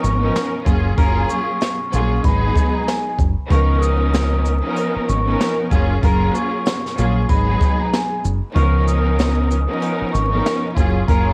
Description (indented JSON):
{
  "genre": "hip hop, boom-bap hip-hop",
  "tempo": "95 BPM",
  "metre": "4/4",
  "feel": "swing 59% on 16ths",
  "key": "F# major",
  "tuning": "A4 = 441 Hz",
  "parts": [
    { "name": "vibraphone with soft mallets", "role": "melody", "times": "0.0-11.3 s", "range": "G#5 to D#6", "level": "-27 LUFS", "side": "equal", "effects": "high-pass filter, low-pass filter, cassette tape, tape echo" },
    { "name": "warm studio string section", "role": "accompaniment", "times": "0.0-11.3 s", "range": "E#3 to A#4", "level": "-24 LUFS", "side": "equal", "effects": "cassette tape, high-pass filter, low-pass filter" },
    { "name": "deep dub fingered electric bass", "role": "bass", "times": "0.0-11.3 s", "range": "F#1 to C#2", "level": "-21 LUFS", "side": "equal", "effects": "transformer saturation" },
    { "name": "jazz brush drum kit", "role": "drums", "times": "0.0-11.3 s", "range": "hi-hat, kick drum, shaker, snare drum", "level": "-22 LUFS", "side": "equal", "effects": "cassette tape" },
    { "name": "warm saxophone section", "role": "stabs", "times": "1.0-11.3 s", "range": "C#4 to A#4", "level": "-36 LUFS", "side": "equal", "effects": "high-pass filter, low-pass filter, cassette tape, tape echo" }
  ],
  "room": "small room ambience",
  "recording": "home recording on cassette, vinyl crackle",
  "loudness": "-18 LUFS",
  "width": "mono",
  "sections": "0.0-11.3 A section",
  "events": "none",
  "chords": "0.0 C#13; 0.7 F#maj9; 2.2 G#m7; 3.5 C#13; 5.7 F#maj9; 7.3 G#m7; 8.6 C#13; 10.8 F#maj9",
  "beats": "0.35 | 0.98 1.61 2.24 2.87 | 3.50 4.14 4.77 5.40 | 6.03 6.66 7.29 7.93 | 8.56 9.19 9.82 10.45 | 11.08"
}